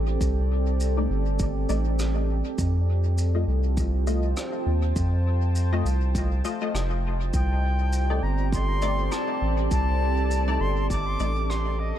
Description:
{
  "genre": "ambient dub",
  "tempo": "101 BPM",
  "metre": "4/4",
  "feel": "swing 57% on 16ths",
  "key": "C dorian",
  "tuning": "A4 = 440 Hz",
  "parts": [
    { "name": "deep dark ambient pad", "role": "sustained chords", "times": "0.0-12.0 s", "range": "C4 to A5", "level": "-30 LUFS", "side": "right 2 dB", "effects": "chorus, built-in reverb" },
    { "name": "soft dub sub bass", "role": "bass", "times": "0.0-11.9 s", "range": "F1 to F2", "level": "-24 LUFS", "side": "equal", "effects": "none" },
    { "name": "electronic kick drum", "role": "drums", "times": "0.2-11.0 s", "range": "none", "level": "-30 LUFS", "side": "equal", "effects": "none" },
    { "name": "shaker and rim click", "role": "drums", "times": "0.2-11.6 s", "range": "none", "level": "-39 LUFS", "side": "equal", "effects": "dub echo" },
    { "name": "filtered dub chord stab", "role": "stabs", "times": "1.0-11.3 s", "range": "A3 to Eb5", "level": "-34 LUFS", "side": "left 4 dB", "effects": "ensemble chorus, dub echo" },
    { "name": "bright reedy silver concert flute", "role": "melody", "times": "7.3-12.0 s", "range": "Eb5 to D6", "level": "-30 LUFS", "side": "left 1 dB", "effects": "dub echo" }
  ],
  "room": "studio reverb",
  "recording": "echo-heavy mix",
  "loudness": "-22 LUFS",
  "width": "side -11 dB against mid",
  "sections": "0.0-12.0 A section",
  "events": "fade-out 10.5-12.0",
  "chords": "0.0 Csus2; 2.6 F7; 7.3 Csus2"
}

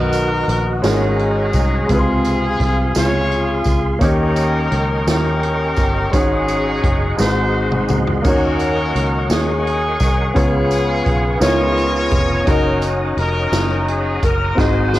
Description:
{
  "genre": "slow gospel",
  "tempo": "57 BPM (dotted quarters)",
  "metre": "6/8",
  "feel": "straight",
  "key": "Db major",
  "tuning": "A4 = 436 Hz",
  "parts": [
    { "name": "clear horn section", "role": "melody", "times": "0.0-15.0 s", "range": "Cb4 to Db5", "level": "-20 LUFS", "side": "left 2 dB", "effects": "none" },
    { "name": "clear grand piano", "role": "accompaniment", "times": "0.0-15.0 s", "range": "Ab2 to C6", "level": "-20 LUFS", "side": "equal", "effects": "cassette tape" },
    { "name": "tonewheel organ", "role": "sustained chords", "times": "0.0-15.0 s", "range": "Cb4 to Eb6", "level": "-26 LUFS", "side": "right 3 dB", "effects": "slow rotary speaker, overdrive, chorus vibrato, cassette tape" },
    { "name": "fingered electric bass", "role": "bass", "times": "0.0-15.0 s", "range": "F1 to Eb2", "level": "-21 LUFS", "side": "equal", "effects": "none" },
    { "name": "swinging big-band drum kit", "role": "drums", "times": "0.1-15.0 s", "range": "crash cymbal, hi-hat, kick drum, snare drum, toms", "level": "-21 LUFS", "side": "equal", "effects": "cassette tape" },
    { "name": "tambourine", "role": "percussion", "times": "0.1-15.0 s", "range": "none", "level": "-34 LUFS", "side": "right 6 dB", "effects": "none" }
  ],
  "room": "small room ambience",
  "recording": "home recording on cassette",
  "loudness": "-14 LUFS",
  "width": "side -15 dB against mid",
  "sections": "0.0-15.0 A section",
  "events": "drum fill 7.2-8.2, 14.6-15.0",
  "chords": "0.0 Cbmaj7; 0.8 Ab9sus4; 1.9 Dbmaj7; 4.0 Eb7; 6.1 Ab7sus4; 7.2 Ab7; 8.2 Ebm7; 10.4 Db7; 11.4 Db13; 12.5 Gb6"
}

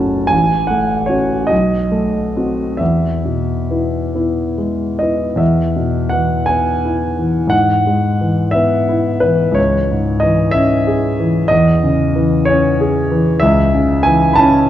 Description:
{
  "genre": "classical, romantic nocturne for solo piano",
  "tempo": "44-64 BPM (dotted quarters)",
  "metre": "6/8",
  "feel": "rubato",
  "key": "E major",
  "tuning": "A4 = 440 Hz",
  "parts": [
    { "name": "warm concert grand piano", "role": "solo", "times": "0.0-14.7 s", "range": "F#1 to B5", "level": "-12 LUFS", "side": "equal", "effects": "none" }
  ],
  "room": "wet concert hall reverb, RT60 2.4 s",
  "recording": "worn, warbling old tape, cassette tape, warbly pitch drift",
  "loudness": "-13 LUFS",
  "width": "side -12 dB against mid",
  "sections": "0.0-5.4 A section; 5.4-14.7 B section",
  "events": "none",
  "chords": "0.3 F#m/A; 1.5 B7b9; 2.8 E; 7.5 E/G#; 9.6 C#m; 11.5 C#m/E; 13.4 A/C#"
}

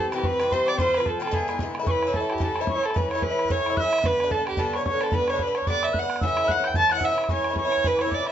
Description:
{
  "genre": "celtic folk, Celtic reel",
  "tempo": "221 BPM",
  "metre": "4/4",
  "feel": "swing 57% on 8ths",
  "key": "A mixolydian",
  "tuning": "A4 = 435 Hz",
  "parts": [
    { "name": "dark fiddle", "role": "melody", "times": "0.0-8.3 s", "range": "G4 to A5", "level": "-24 LUFS", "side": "right 3 dB", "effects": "none" },
    { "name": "mellow wooden whistle", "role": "second line", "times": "0.0-8.3 s", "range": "G5 to A6", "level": "-30 LUFS", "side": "left 6 dB", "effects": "none" },
    { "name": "Irish bouzouki", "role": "accompaniment", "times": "0.0-8.3 s", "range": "G2 to G4", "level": "-29 LUFS", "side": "left 4 dB", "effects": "none" },
    { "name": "bodhran", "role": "percussion", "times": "0.1-8.3 s", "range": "none", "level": "-29 LUFS", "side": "right 1 dB", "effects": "none" }
  ],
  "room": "wet small room reverb, RT60 0.5 s",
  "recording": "nothing above 7.8 kHz",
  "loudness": "-21 LUFS",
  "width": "side -10 dB against mid",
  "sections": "0.0-1.9 A section; 1.9-8.3 B section",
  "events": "none",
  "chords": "0.0 C; 0.8 F; 1.3 E7; 1.9 A; 4.0 G; 6.2 A"
}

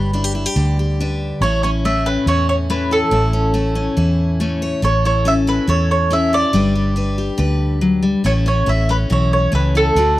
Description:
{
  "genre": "honky-tonk and classic country",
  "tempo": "140 BPM",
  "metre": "4/4",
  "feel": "straight",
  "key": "A mixolydian",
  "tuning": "A4 = 440 Hz",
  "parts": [
    { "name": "mandolin", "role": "melody", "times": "0.0-10.2 s", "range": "A4 to E5", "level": "-19 LUFS", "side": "right 1 dB", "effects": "none" },
    { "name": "picked steel-string acoustic guitar", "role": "accompaniment", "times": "0.0-10.2 s", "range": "A2 to C#5", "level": "-19 LUFS", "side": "left 2 dB", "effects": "none" },
    { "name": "vintage muted fingered electric bass", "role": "bass", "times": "0.0-10.2 s", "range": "G1 to E2", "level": "-18 LUFS", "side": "equal", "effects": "none" }
  ],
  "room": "small room ambience",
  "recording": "dry, close 1970s-style studio recording",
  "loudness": "-14 LUFS",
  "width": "side -16 dB against mid",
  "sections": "0.0-1.4 A section; 1.4-10.2 B section",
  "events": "none",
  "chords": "0.0 G; 1.4 A; 6.5 G; 8.3 A"
}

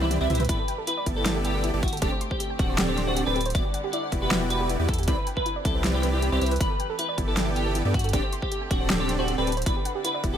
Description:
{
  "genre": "future bass",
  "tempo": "157 BPM",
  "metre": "4/4",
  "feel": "half-time",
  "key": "G major",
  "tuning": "A4 = 441 Hz",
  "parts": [
    { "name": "semi-hollow electric guitar", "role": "melody", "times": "0.0-10.4 s", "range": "E4 to D5", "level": "-30 LUFS", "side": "left 1 dB", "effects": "ensemble chorus, sidechain pumping, tape echo" },
    { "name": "rich chamber string section", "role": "sustained chords", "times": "0.0-10.4 s", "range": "D3 to F#5", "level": "-37 LUFS", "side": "equal", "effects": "sidechain pumping" },
    { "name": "soft round pluck", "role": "arpeggios", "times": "0.0-10.4 s", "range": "E4 to C6", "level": "-34 LUFS", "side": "right 3 dB", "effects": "chorus, sidechain pumping, digital delay" },
    { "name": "dense compressed supersaw", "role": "riff", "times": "0.0-10.4 s", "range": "B3 to E5", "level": "-30 LUFS", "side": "equal", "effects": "sidechain pumping" },
    { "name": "saturated sub bass", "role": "bass", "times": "0.0-10.4 s", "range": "D1 to G2", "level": "-28 LUFS", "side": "equal", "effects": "sidechain pumping" },
    { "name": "big-room dance drum kit", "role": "drums", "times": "0.0-10.3 s", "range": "hi-hat, snare drum, toms", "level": "-29 LUFS", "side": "equal", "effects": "overdrive" },
    { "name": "electronic kick drum", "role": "drums", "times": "0.5-10.3 s", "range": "none", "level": "-27 LUFS", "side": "equal", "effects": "overdrive" }
  ],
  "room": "little or no reverb",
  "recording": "none",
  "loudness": "-23 LUFS",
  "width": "side -9 dB against mid",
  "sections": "0.0-10.4 A section",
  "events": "drum fill 0.0-0.5",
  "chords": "0.5 G69; 2.0 D7sus4; 3.5 Em9; 5.1 Cmaj9; 6.6 G69; 8.1 D7sus4; 9.7 Em9"
}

